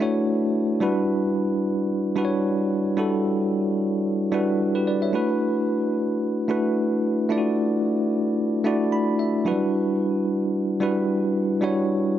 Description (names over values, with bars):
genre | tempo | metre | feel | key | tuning
amapiano | 111 BPM | 4/4 | swing 55% on 16ths | E dorian | A4 = 440 Hz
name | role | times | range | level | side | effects
bell-like tine electric piano | solo | 0.0-12.2 s | F#3 to B5 | -21 LUFS | equal | medium stereo tremolo
room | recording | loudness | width
light reverb | none | -21 LUFS | side -11 dB against mid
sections
0.0-12.2 A section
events
tine electric piano fill 8.7-9.5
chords
0.0 D69; 0.8 Em9; 5.1 D69; 9.5 Em9